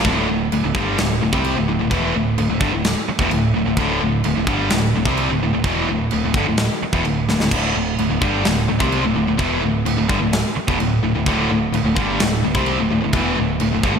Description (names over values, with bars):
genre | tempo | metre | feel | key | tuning
heavy metal | 128 BPM | 4/4 | straight | unclear | A4 = 440 Hz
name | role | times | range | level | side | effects
distorted electric guitar | riff | 0.0-14.0 s | D2 to C4 | -22 LUFS | left 9 dB | overdrive
high-gain distorted guitar | riff | 0.0-14.0 s | D2 to C4 | -21 LUFS | right 8 dB | distortion
growling picked electric bass | bass | 0.0-13.9 s | D1 to C2 | -25 LUFS | equal | overdrive
tight metal drum kit | drums | 0.0-13.9 s | china cymbal, crash cymbal, kick drum, snare drum | -23 LUFS | equal | gated reverb
room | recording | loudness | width
moderate lush hall reverb, RT60 1.9 s, small room ambience | bright 1980s-style digital production | -16 LUFS | side -6 dB against mid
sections
0.1-14.0 A section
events
drum fill 7.3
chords
0.1 D5